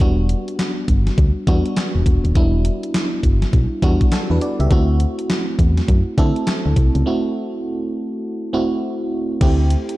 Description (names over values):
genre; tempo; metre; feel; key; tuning
R&B, new jack swing; 102 BPM; 4/4; swing 63% on 16ths; unclear; A4 = 440 Hz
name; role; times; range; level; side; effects
FM electric piano; accompaniment; 0.0-10.0 s; G3 to E5; -22 LUFS; right 1 dB; chorus
solid FM bass; bass; 0.0-9.8 s; D#1 to D3; -17 LUFS; equal; none
gated 80s digital drum machine; drums; 0.0-10.0 s; crash cymbal, handclaps, hi-hat, kick drum, snare drum; -18 LUFS; equal; gated reverb, gated reverb snare
room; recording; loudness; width
digital ambience; dark, warm production; -16 LUFS; side -18 dB against mid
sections
0.0-9.4 A section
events
break 7.1-9.4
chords
0.0 Em7; 4.7 D7 (rootless); 9.4 D9sus4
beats
| 0.00 0.59 1.18 1.76 | 2.35 2.94 3.53 4.12 | 4.71 5.29 5.88 6.47 | 7.06 7.65 8.24 8.82 | 9.41